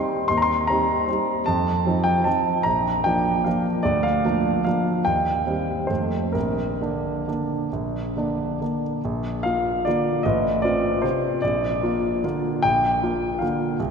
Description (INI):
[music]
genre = classical, piano waltz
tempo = 128-163 BPM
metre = 3/4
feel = rubato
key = Bb major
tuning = A4 = 445 Hz
[part]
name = warm concert grand piano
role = solo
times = 0.0-13.9 s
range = A1 to C6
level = -20 LUFS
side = equal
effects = none
[sound]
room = wet church reverb, RT60 3.8 s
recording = none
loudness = -20 LUFS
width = side -6 dB against mid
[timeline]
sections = 0.0-9.0 A section; 9.0-13.9 B section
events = none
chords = 0.0 Cm/Eb; 1.5 F7; 2.7 Bb; 3.9 Bb/D; 5.1 Cm/Eb; 5.9 F7; 6.4 Bb; 10.2 F7/A; 11.4 Bb